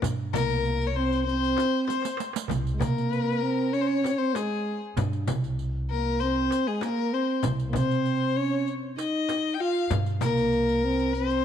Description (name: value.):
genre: Arabic maqam ensemble.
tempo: 97 BPM.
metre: 4/4.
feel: straight.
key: C maqam kurd.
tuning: A4 = 440 Hz.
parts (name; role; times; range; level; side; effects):
upright bass; bass; 0.0-11.4 s; C2 to C3; -29 LUFS; equal; none.
darbuka; percussion; 0.0-11.4 s; none; -34 LUFS; right 9 dB; none.
frame drum; percussion; 0.0-10.4 s; none; -34 LUFS; left 9 dB; none.
riq; percussion; 0.0-11.4 s; none; -39 LUFS; right 11 dB; none.
rich violin; second line; 0.3-11.4 s; Ab4 to G5; -29 LUFS; left 9 dB; slapback echo.
dark French horn; melody; 0.4-11.4 s; Ab3 to F4; -27 LUFS; right 2 dB; none.
room: light reverb, small room ambience.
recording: 1960s-style stereo with parts hard left and right.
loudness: -24 LUFS.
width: side -9 dB against mid.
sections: 0.0-11.4 A section.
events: drum fill 1.9-2.5.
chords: none.